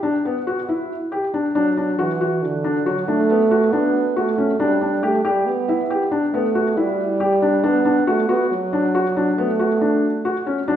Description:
contemporary instrumental, chamber music in an uneven meter; 138 BPM; 7/4; straight; B minor; A4 = 440 Hz
felt-muted upright piano; arpeggios; 0.0-10.8 s; B3 to G4; -19 LUFS; left 2 dB
mellow French horn; second line; 1.6-10.8 s; D3 to B3; -20 LUFS; right 3 dB
wet recital hall reverb, RT60 1.5 s; recorded in a church or concert hall; -17 LUFS; side -10 dB against mid
0.0-10.8 A section
0.0 Em7; 1.6 Bm7 (rootless); 4.6 Em7; 7.6 Bm (rootless)
0.25 0.69 1.12 | 1.55 1.99 2.42 2.86 3.29 3.73 4.16 | 4.60 5.03 5.46 5.90 6.33 6.77 7.20 | 7.64 8.07 8.50 8.94 9.37 9.81 10.24 | 10.67

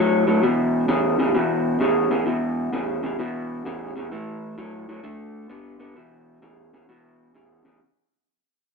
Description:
blues; 130 BPM; 4/4; swing 66% on 8ths; A4 = 436 Hz
electric guitar through a small old amp; solo; 0.0-7.8 s; E2 to B3; -21 LUFS; equal
moderate large studio reverb, RT60 1.1 s; band playing live in one room; -20 LUFS; side -4 dB against mid
0.0-7.8 A section
fade-out 0.0-7.8
0.4 E5; 4.1 A5; 5.0 D5; 6.0 E5
| 0.43 0.89 1.35 1.81 | 2.27 2.74 3.20 3.66 | 4.12 4.58 5.04 5.50 | 5.97 6.43 6.89 7.35

